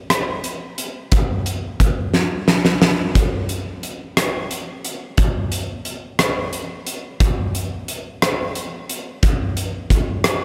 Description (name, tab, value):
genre	rock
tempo	59 BPM (dotted quarters)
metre	6/8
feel	straight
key	none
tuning	none
part	huge arena drum kit	drums	0.1-10.4 s	hi-hat, kick drum, rim click, snare drum	-20 LUFS	equal	none
room	little or no reverb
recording	none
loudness	-21 LUFS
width	mono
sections	0.0-3.1 A section; 3.1-10.4 A section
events	drum fill 2.1-3.1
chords	none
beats	0.10 | 1.12 2.13 | 3.15 4.16 | 5.18 6.19 | 7.21 8.22 | 9.23 10.24